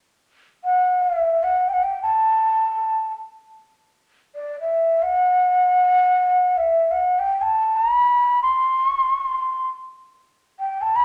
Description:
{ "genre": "Turkish makam ensemble", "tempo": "free time", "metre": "none", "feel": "none", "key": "A makam huseyni", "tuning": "A4 = 440 Hz", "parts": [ { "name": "breathy mellow ney", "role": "solo", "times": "0.6-11.0 s", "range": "D5 to C6", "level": "-20 LUFS", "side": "equal", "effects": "none" } ], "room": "wet large studio reverb, RT60 1.2 s", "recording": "none", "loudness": "-20 LUFS", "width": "mono", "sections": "0.1-11.0 A section", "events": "none", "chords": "none", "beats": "free time" }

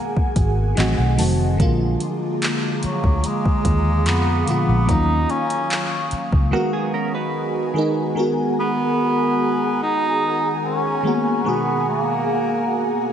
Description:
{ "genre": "contemporary R&B", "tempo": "73 BPM", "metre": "4/4", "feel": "straight", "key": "G# dorian", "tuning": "A4 = 440 Hz", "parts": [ { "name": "clear bass clarinet", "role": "melody", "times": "0.0-13.1 s", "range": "F#3 to D#4", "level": "-22 LUFS", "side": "equal", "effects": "diffuse ambient delay" }, { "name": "FM electric piano with soft pad layer", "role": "accompaniment", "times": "0.0-13.1 s", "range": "A#2 to A5", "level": "-23 LUFS", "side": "left 1 dB", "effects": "chorus, phaser" }, { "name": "ethereal airy pad", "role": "sustained chords", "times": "0.0-13.1 s", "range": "F#3 to D#6", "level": "-26 LUFS", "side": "right 2 dB", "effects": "ensemble chorus, built-in reverb, sidechain pumping" }, { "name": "vintage muted fingered electric bass", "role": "bass", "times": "0.2-6.5 s", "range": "E#1 to E#2", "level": "-20 LUFS", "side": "equal", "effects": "none" }, { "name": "smooth R&B drum kit", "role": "drums", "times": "0.2-6.5 s", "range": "handclaps, hi-hat, kick drum", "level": "-22 LUFS", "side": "equal", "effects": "none" }, { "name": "small celesta", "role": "texture", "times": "4.9-5.9 s", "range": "none", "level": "barely audible", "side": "none", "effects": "none" }, { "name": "direct-recorded clean electric guitar", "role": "arpeggios", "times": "6.5-8.1 s", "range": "A#3 to B4", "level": "-28 LUFS", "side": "right 5 dB", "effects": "analog chorus, diffuse ambient delay" } ], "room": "wet lush hall reverb, RT60 2.2 s", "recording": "dreamy mix soaked in reverb, nothing above 10.5 kHz", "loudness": "-18 LUFS", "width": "side -9 dB against mid", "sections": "0.0-8.2 A section; 8.2-13.1 A section", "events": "FM electric piano fill 0.4-1.6; break 6.5-8.2", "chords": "0.0 G#m9; 0.8 Adim7; 1.6 A#7; 4.9 D#m9; 6.5 G#m9", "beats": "0.77 | 1.60 2.42 3.24 4.06 | 4.88 5.71 6.53 7.35 | 8.17 8.99 9.81 10.64 | 11.46 12.28 13.10" }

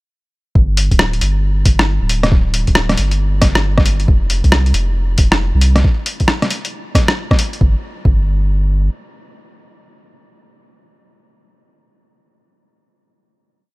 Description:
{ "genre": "future garage", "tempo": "136 BPM", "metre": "4/4", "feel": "swing 63% on 16ths", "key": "unclear", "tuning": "A4 = 440 Hz", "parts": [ { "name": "soft dub sub bass", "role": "bass", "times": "0.6-8.9 s", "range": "D1 to C2", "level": "-15 LUFS", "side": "equal", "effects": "none" }, { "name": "electronic kick drum", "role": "drums", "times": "0.6-8.2 s", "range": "none", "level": "-13 LUFS", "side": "equal", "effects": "none" }, { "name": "lo-fi sampler-style drum kit", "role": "drums", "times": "0.8-7.6 s", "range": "hi-hat, rim click", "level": "-17 LUFS", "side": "equal", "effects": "overdrive" } ], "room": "digital ambience", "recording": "none", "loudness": "-12 LUFS", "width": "side -22 dB against mid", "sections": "0.6-7.6 chorus; 7.6-11.1 final note", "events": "none", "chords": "none", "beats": "| 0.55 0.99 1.43 1.88 | 2.32 2.76 3.20 3.64 | 4.08 4.52 4.96 5.40 | 5.84 6.29 6.73 7.17 | 7.61 8.05 8.49" }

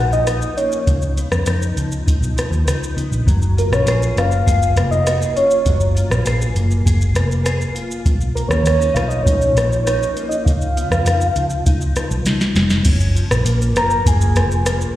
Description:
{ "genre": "indie pop, bedroom pop", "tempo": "100 BPM", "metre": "4/4", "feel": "straight", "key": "F# major", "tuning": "A4 = 441 Hz", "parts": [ { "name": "soft octave-layered synth lead", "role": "melody", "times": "0.0-14.7 s", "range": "A#4 to A#5", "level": "-19 LUFS", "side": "equal", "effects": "wide subtle chorus, slapback echo, tape echo" }, { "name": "mellow electric guitar", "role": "accompaniment", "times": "0.0-15.0 s", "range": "C#3 to G#4", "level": "-26 LUFS", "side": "left 3 dB", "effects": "ensemble chorus, vibrato effect, slapback echo" }, { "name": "vintage muted picked electric bass", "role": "bass", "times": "0.0-14.8 s", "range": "E#1 to E#2", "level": "-18 LUFS", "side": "equal", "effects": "none" }, { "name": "soft vintage rhythm box", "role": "drums", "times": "0.1-14.9 s", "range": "crash cymbal, hi-hat, kick drum, rim click, shaker, snare drum", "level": "-19 LUFS", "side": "equal", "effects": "slapback echo" } ], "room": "light reverb", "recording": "live gig heard through the venue's PA, recital hall reverb", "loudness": "-15 LUFS", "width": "side -14 dB against mid", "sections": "0.0-12.9 A section; 12.9-15.0 B section", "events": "drum fill 12.3-12.9", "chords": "0.0 Bmaj7#11 (rootless); 0.9 C#9; 3.3 F#maj9; 8.1 Bmaj9#11; 10.5 C#9; 12.9 F#maj7", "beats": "0.26 | 0.86 1.46 2.06 2.66 | 3.26 3.86 4.46 5.06 | 5.66 6.26 6.86 7.46 | 8.06 8.66 9.26 9.86 | 10.46 11.06 11.66 12.26 | 12.86 13.46 14.06 14.66" }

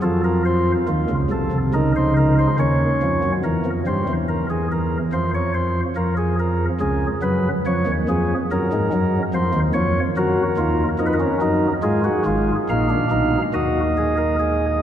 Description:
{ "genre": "classical, baroque-style 3-part fugue for pipe organ", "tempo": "71 BPM", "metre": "4/4", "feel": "straight", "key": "Eb minor", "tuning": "A4 = 440 Hz", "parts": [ { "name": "chamber organ, flutes", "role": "solo", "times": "0.0-14.8 s", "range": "Ab1 to F5", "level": "-17 LUFS", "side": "equal", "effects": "none" } ], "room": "wet cathedral reverb, RT60 5.3 s", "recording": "none", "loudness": "-18 LUFS", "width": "side -10 dB against mid", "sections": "0.0-3.4 A section; 3.4-14.8 B section", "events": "none", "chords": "0.0 F; 1.7 Bbm/Db; 3.4 C7/E; 5.1 Fm; 6.8 Db7; 8.5 Gb; 10.2 Ebm; 11.8 Fm/Ab; 12.7 Bb; 13.5 Ebm", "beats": "| 0.04 0.88 1.73 2.59 | 3.43 4.28 5.12 5.97 | 6.81 7.65 8.49 9.32 | 10.16 10.99 11.83 12.67 | 13.53 14.39" }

